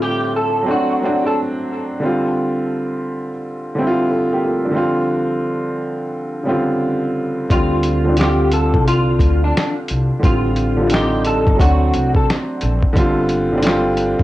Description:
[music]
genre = lo-fi hip hop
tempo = 88 BPM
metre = 4/4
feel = swing 65% on 16ths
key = D minor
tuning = A4 = 440 Hz
[part]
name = electric guitar through a small old amp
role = melody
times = 0.0-1.4, 7.5-12.3 s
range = D4 to A4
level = -20 LUFS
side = equal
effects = ensemble chorus, cassette tape, analog delay
[part]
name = warm upright piano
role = accompaniment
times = 0.0-14.2 s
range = A2 to A4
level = -18 LUFS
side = equal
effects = cassette tape
[part]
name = upright bass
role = bass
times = 7.5-14.2 s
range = F1 to D2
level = -19 LUFS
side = equal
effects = transformer saturation
[part]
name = lo-fi sampler-style drum kit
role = drums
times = 7.5-14.2 s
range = hi-hat, kick drum, snare drum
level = -18 LUFS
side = equal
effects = overdrive, cassette tape
[sound]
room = moderate studio reverb, RT60 0.6 s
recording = home recording on cassette, nothing above 10.4 kHz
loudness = -15 LUFS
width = side -16 dB against mid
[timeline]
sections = 0.0-7.5 A section; 7.5-14.2 B section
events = none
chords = 0.0 F69/A; 0.7 D7; 2.0 G5; 4.8 G7sus4; 7.5 Dm7; 10.2 Am7b5; 11.6 D7; 13.0 G5

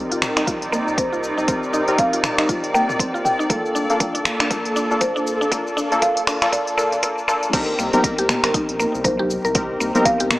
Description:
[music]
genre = afro house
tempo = 119 BPM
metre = 4/4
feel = swing 58% on 16ths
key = C dorian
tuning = A4 = 435 Hz
[part]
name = muted studio string section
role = sustained chords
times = 0.0-7.5 s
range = C3 to D5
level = -25 LUFS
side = right 1 dB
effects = sidechain pumping
[part]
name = mallet-like synth pluck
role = arpeggios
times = 0.0-10.3 s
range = Bb3 to Bb4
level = -25 LUFS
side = equal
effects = chorus, sidechain pumping, analog delay
[part]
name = warm analog keys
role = stabs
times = 0.0-10.4 s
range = Bb3 to Bb4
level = -22 LUFS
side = left 1 dB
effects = chorus, sidechain pumping, low-pass filter, tape echo
[part]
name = round analog bass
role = bass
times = 0.1-10.3 s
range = G1 to Eb2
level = -36 LUFS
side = equal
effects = sidechain pumping
[part]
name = deep house drum kit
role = drums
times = 0.1-10.4 s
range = cabasa, crash cymbal, finger snaps, hi-hat, toms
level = -24 LUFS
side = equal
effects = none
[part]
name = electronic kick drum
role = drums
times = 0.5-10.2 s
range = none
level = -25 LUFS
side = equal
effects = none
[part]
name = folk marimba with soft mallets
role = melody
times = 1.0-10.3 s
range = C5 to G5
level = -24 LUFS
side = equal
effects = analog delay
[part]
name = congas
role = percussion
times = 7.9-10.4 s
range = none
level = -25 LUFS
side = left 1 dB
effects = tape echo
[sound]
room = wet plate reverb, RT60 2.5 s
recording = echo-heavy mix, high-pass filter, small speaker sound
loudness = -17 LUFS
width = side -18 dB against mid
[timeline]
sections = 0.0-7.5 A section; 7.5-10.4 B section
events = build-up 0.0-7.5; filter sweep on synth arpeggio sound 0.0-7.5; filter sweep on synth keys 0.0-7.5; drop 7.5-10.4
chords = 0.0 Cm7; 3.5 Bbmaj7; 7.5 Cm7

